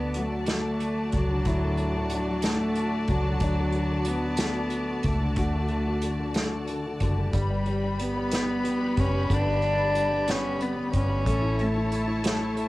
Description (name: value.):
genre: six-eight pop ballad.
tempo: 61 BPM (dotted quarters).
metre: 6/8.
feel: straight.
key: D major.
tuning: A4 = 439 Hz.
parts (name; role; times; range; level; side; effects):
warm cello; melody; 0.0-12.7 s; F#3 to D4; -28 LUFS; equal; tape echo.
warm concert grand piano; accompaniment; 0.0-12.7 s; A2 to F#4; -32 LUFS; left 2 dB; cassette tape.
rich studio string section; sustained chords; 0.0-12.7 s; E4 to B5; -34 LUFS; left 1 dB; cassette tape.
vintage muted fingered electric bass; bass; 0.0-12.7 s; F#1 to D2; -29 LUFS; equal; none.
unplugged drum kit; drums; 0.1-12.7 s; hi-hat, kick drum, snare drum; -30 LUFS; equal; cassette tape.
room: moderate small room reverb, RT60 0.5 s.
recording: home recording on cassette.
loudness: -24 LUFS.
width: side -18 dB against mid.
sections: 0.0-12.7 A section.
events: none.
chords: 0.0 D; 7.3 G; 11.3 A.